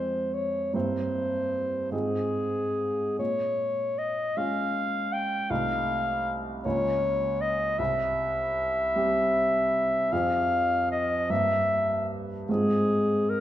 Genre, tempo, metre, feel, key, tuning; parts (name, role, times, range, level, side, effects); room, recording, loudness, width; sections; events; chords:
classical, romantic duo for clarinet and grand piano; 46-53 BPM (dotted quarters); 6/8; rubato; F minor; A4 = 439 Hz
mellow clarinet; melody; 0.0-13.4 s; Ab4 to G5; -26 LUFS; left 1 dB
clear grand piano; accompaniment; 0.0-13.4 s; C2 to Ab4; -30 LUFS; right 2 dB
wet recital hall reverb, RT60 1.7 s; minimal, uncompressed stereo recording; -24 LUFS; side -12 dB against mid
0.0-13.4 A section
0.0 Fm; 0.7 C7/G; 1.9 Fm/Ab; 3.2 Bbm7; 5.5 F7/C; 6.6 Bbm/Db; 7.8 C; 10.1 Fm; 11.3 Edim/G; 12.5 Fm/Ab